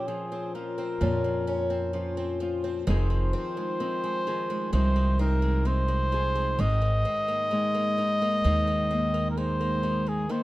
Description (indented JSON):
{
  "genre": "acoustic folk duo or small band",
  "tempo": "65 BPM",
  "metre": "4/4",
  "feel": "straight",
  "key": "unclear",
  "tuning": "A4 = 441 Hz",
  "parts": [
    { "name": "trumpet with cup mute", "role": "melody", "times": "0.0-10.4 s", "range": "Ab4 to Eb5", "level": "-29 LUFS", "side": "equal", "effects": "none" },
    { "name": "nylon-string guitar", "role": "accompaniment", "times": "0.0-10.4 s", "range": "Ab2 to Ab4", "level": "-31 LUFS", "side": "left 3 dB", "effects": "none" },
    { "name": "picked twelve-string acoustic guitar", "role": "arpeggios", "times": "0.0-10.4 s", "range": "Eb3 to Db4", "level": "-34 LUFS", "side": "right 3 dB", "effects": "none" },
    { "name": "upright bass", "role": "bass", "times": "1.0-10.3 s", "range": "F1 to F2", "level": "-26 LUFS", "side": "equal", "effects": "none" }
  ],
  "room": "light reverb",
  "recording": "close, detailed microphones",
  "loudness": "-24 LUFS",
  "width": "side -17 dB against mid",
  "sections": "0.0-10.3 A section",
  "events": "none",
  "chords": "0.0 Bbmadd9; 2.9 Fm7; 6.6 Abadd9"
}